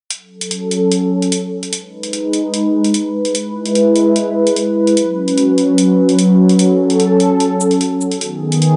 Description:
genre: heavy wobble dubstep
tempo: 148 BPM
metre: 4/4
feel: half-time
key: F# dorian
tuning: A4 = 440 Hz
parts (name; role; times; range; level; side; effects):
- lush unison pad; sustained chords; 0.1-8.8 s; D#3 to B4; -15 LUFS; equal; chorus, phaser
- electronic hi-hat and shaker; drums; 0.1-8.7 s; none; -24 LUFS; equal; overdrive
room: wet lush hall reverb, RT60 1.9 s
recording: dreamy mix soaked in reverb, nothing above 10.6 kHz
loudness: -14 LUFS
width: mono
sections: 0.1-8.8 A section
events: filter sweep on analog synth pad 0.1-8.8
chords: 0.1 F#m; 1.7 G#m; 3.3 E/G#; 5.0 Bsus2; 6.6 F#m; 8.2 G#m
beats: | 0.10 0.51 0.92 1.32 | 1.73 2.13 2.54 2.94 | 3.35 3.75 4.16 4.57 | 4.97 5.38 5.78 6.19 | 6.59 7.00 7.40 7.81 | 8.21 8.62

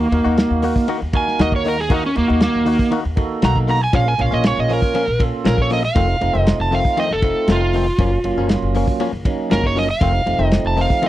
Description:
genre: straight-eighth soul blues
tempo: 118 BPM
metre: 4/4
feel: straight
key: unclear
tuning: A4 = 443 Hz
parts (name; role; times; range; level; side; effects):
- overdriven slide guitar; melody; 0.0-11.1 s; Bb3 to Bb5; -19 LUFS; right 1 dB; none
- tonewheel organ; accompaniment; 0.0-11.1 s; F3 to Db5; -24 LUFS; right 5 dB; slow rotary speaker
- direct-recorded clean electric guitar; stabs; 0.0-11.1 s; F2 to Gb4; -24 LUFS; left 5 dB; none
- upright bass; bass; 0.0-10.8 s; F1 to Eb2; -21 LUFS; equal; none
- warm soul drum kit; drums; 0.1-11.1 s; hi-hat, kick drum, ride cymbal, snare drum; -20 LUFS; equal; none
room: studio ambience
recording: dry, close 1970s-style studio recording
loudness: -15 LUFS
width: side -14 dB against mid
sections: 0.0-11.1 A section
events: electric slide guitar solo 0.0-11.1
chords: 0.0 Ebm; 3.9 Bbm; 6.0 F7; 8.0 Gbmaj7; 10.0 F7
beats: 0.38 0.89 1.40 | 1.90 2.41 2.92 3.42 | 3.93 4.44 4.94 5.45 | 5.96 6.46 6.97 7.48 | 7.98 8.49 9.00 9.51 | 10.01 10.52 11.03

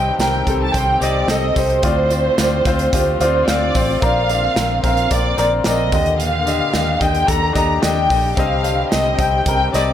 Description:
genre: piano-driven pop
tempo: 110 BPM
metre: 4/4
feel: straight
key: unclear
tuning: A4 = 443 Hz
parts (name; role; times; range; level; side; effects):
- warm studio violin section; melody; 0.0-9.9 s; C5 to Bb5; -19 LUFS; right 1 dB; none
- bright upright piano; accompaniment; 0.0-9.9 s; G2 to F5; -20 LUFS; left 3 dB; none
- warm studio string section; sustained chords; 0.0-9.9 s; D3 to G4; -30 LUFS; equal; none
- vintage muted fingered electric bass; bass; 0.0-9.9 s; A1 to Eb2; -22 LUFS; right 1 dB; none
- modern studio drum kit; drums; 0.2-9.9 s; hi-hat, kick drum, snare drum; -22 LUFS; right 1 dB; none
- tambourine; percussion; 0.2-9.9 s; none; -36 LUFS; right 8 dB; none
room: light reverb, small room reverb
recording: none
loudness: -14 LUFS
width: side -10 dB against mid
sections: 0.0-9.9 A section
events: none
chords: 0.0 Cm; 1.8 Dm7; 4.0 Bbadd9; 5.9 Ebmaj7; 8.4 Cm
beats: 0.20 0.75 1.29 | 1.84 2.38 2.93 3.48 | 4.02 4.57 5.11 5.65 | 6.20 6.74 7.29 7.83 | 8.38 8.92 9.46

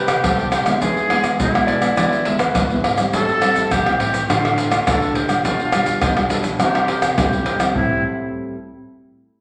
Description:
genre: samba and choro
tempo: 104 BPM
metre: 4/4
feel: straight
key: A minor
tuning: A4 = 441 Hz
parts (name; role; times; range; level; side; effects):
- clear concert grand piano; melody; 0.0-2.8 s; A4 to E5; -27 LUFS; equal; none
- breathy bright jazz flute; second line; 0.0-8.0 s; E4 to A4; -25 LUFS; equal; none
- nylon-string guitar; accompaniment; 0.0-8.5 s; G2 to F4; -26 LUFS; equal; none
- nylon-string guitar; bass; 0.0-8.0 s; D2 to C4; -31 LUFS; equal; none
- tube shaker, pandeiro, tamborim and surdo; percussion; 0.1-7.9 s; none; -21 LUFS; equal; none
room: wet large studio reverb, RT60 1.3 s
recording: none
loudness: -18 LUFS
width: mono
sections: 0.0-3.1 A section; 3.1-7.8 B section; 7.8-9.4 C section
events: none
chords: 0.0 Am7/C; 0.8 E; 3.1 Am7; 4.3 Dm/A; 5.4 G7/B; 6.6 C; 7.8 Am7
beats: 0.24 | 0.82 1.40 1.98 2.55 | 3.13 3.71 4.29 4.87 | 5.45 6.02 6.60 7.18 | 7.75 8.33

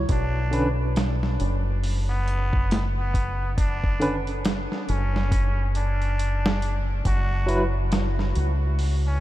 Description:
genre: trip hop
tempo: 69 BPM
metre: 4/4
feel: swing 60% on 16ths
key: B minor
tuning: A4 = 442 Hz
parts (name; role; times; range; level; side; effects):
- barky tine electric piano; accompaniment; 0.0-7.6 s; D3 to B4; -30 LUFS; equal; tremolo, tape echo
- deep dub fingered electric bass; bass; 0.0-9.2 s; F#1 to C#2; -24 LUFS; equal; none
- trumpet with straight mute; melody; 0.1-9.2 s; B3 to F#4; -32 LUFS; equal; tape echo
- dusty soul sampler-style drum kit; drums; 0.1-9.0 s; hi-hat, kick drum, snare drum; -27 LUFS; equal; small room ambience
room: light reverb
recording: none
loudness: -22 LUFS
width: side -15 dB against mid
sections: 0.0-9.2 A section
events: none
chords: 0.1 Bm; 7.1 F#5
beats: | 0.10 0.97 1.84 2.71 | 3.58 4.45 5.31 6.18 | 7.05 7.92 8.79

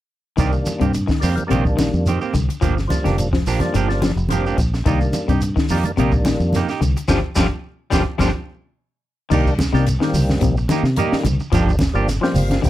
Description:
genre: afrobeat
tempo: 108 BPM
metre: 4/4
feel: straight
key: C minor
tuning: A4 = 439 Hz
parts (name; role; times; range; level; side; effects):
- percussive tonewheel organ; accompaniment; 0.4-12.7 s; Eb3 to G5; -24 LUFS; equal; slow rotary speaker, chorus vibrato
- electric guitar at the edge of break-up; arpeggios; 0.4-12.7 s; C3 to G3; -23 LUFS; left 6 dB; none
- electric guitar at the edge of break-up; stabs; 0.4-12.5 s; Eb3 to G4; -25 LUFS; right 7 dB; none
- fingered electric bass; bass; 0.4-12.7 s; F1 to C3; -20 LUFS; equal; none
- compact cocktail drum kit; drums; 0.4-12.7 s; crash cymbal, hi-hat, kick drum, snare drum; -22 LUFS; equal; none
- congas; percussion; 0.4-12.7 s; none; -24 LUFS; right 1 dB; none
- shekere; percussion; 0.4-12.7 s; none; -29 LUFS; right 2 dB; none
room: light reverb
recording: none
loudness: -16 LUFS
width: side -14 dB against mid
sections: 0.4-9.3 A section; 9.3-12.7 B section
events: band accent 7.1-9.3; drum fill 8.5-9.3; tonewheel organ fill 12.1-12.7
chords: 0.4 Cm7; 2.6 Gm7; 4.9 Cm7; 7.1 Gm7; 9.3 Cm7; 11.5 Gm7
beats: | 0.39 0.95 1.51 2.07 | 2.63 3.19 3.75 4.30 | 4.86 5.42 5.98 6.54 | 7.09 7.65 8.20 8.76 | 9.31 9.87 10.42 10.97 | 11.53 12.08 12.63

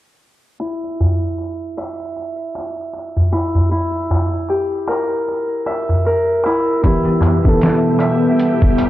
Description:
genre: trip hop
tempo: 77 BPM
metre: 4/4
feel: swing 58% on 16ths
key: unclear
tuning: A4 = 441 Hz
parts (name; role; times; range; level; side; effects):
- Celtic harp; arpeggios; 0.6-8.9 s; E4 to E5; -20 LUFS; equal; vintage 12-bit sampler grit, low-pass filter, tape echo
- darbuka; percussion; 0.6-8.9 s; none; -20 LUFS; equal; none
- felt-muted upright piano; accompaniment; 6.8-8.9 s; E3 to A4; -16 LUFS; equal; harmonic tremolo, vintage 12-bit sampler grit, tape echo
- string machine, cellos; sustained chords; 6.8-8.9 s; B3 to G5; -18 LUFS; left 1 dB; ensemble chorus
- trip hop sampler-style drum kit; drums; 6.8-8.9 s; hi-hat, kick drum, snare drum; -15 LUFS; equal; small room ambience
room: light reverb, studio reverb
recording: dark, warm production, low-pass filter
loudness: -15 LUFS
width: side -14 dB against mid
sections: 0.6-8.9 A section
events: filter sweep on harp 0.6-8.9; filter sweep 0.6-8.9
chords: 0.6 N.C.; 3.7 Gm; 6.8 Em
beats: | 0.60 1.39 2.16 2.94 | 3.72 4.50 5.28 6.06 | 6.84 7.62 8.40

